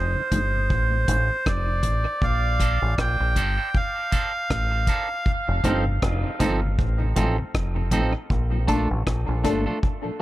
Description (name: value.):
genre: dub reggae.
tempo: 79 BPM.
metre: 4/4.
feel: swing 57% on 16ths.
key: Bb major.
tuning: A4 = 440 Hz.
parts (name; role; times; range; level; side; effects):
melodica; melody; 0.0-5.3 s; C5 to G5; -26 LUFS; right 2 dB; dub echo.
deep dub fingered electric bass; bass; 0.0-9.7 s; F1 to Bb1; -24 LUFS; equal; none.
mellow tonewheel organ; accompaniment; 0.2-10.1 s; F2 to Eb4; -32 LUFS; left 2 dB; chorus vibrato, stopped rotary speaker, high-pass filter, dub echo.
deep reggae drum kit; drums; 0.3-10.0 s; hi-hat, kick drum, rim click; -26 LUFS; equal; none.
semi-hollow electric guitar; accompaniment; 2.6-10.2 s; F3 to A4; -29 LUFS; right 3 dB; high-pass filter, dub echo.
filtered dub chord stab; stabs; 8.7-10.2 s; Bb3 to A4; -28 LUFS; left 2 dB; phaser, dub echo.
room: light reverb, small room reverb.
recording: echo-heavy mix.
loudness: -21 LUFS.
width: side -16 dB against mid.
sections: 0.0-10.2 A section.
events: break 0.0-2.2; filter sweep 0.0-5.3.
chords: 0.0 F; 2.2 Bbmaj7; 5.3 F7; 8.3 Bbmaj7.